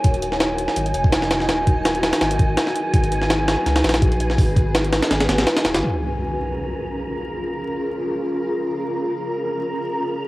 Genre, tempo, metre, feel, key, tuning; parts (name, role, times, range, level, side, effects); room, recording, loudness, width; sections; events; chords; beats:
drum and bass, jungle; 166 BPM; 4/4; swing 53% on 16ths; Bb phrygian; A4 = 440 Hz
granular cloud pad; sustained chords; 0.0-10.3 s; Db4 to Eb5; -25 LUFS; equal; built-in reverb, vintage 12-bit sampler grit
saturated sub bass; bass; 0.0-5.8 s; Eb1 to Db2; -24 LUFS; equal; tube saturation
jungle sampler-style drum kit; drums; 0.0-5.8 s; hi-hat, kick drum, snare drum; -18 LUFS; equal; cassette tape
wind-like tuned noise texture; texture; 0.0-10.3 s; Ab5 to Bb5; -27 LUFS; right 1 dB; built-in reverb
impact; sound effects; 5.8-7.3 s; -28 LUFS; equal
wet spring reverb, RT60 1.1 s, digital ambience; home recording on cassette, vinyl crackle; -18 LUFS; side -18 dB against mid
0.0-5.8 A section; 5.8-10.3 B section
impact 5.8-7.3
0.0 Ebm; 2.2 Abm7; 5.8 Bbm7
| 0.05 0.41 0.77 1.13 | 1.49 1.85 2.22 2.58 | 2.94 3.30 3.66 4.02 | 4.38 4.75 5.11 5.47 | 5.83 6.19 6.55 6.92 | 7.28 7.64 8.00 8.36 | 8.72 9.08 9.45 9.81 | 10.17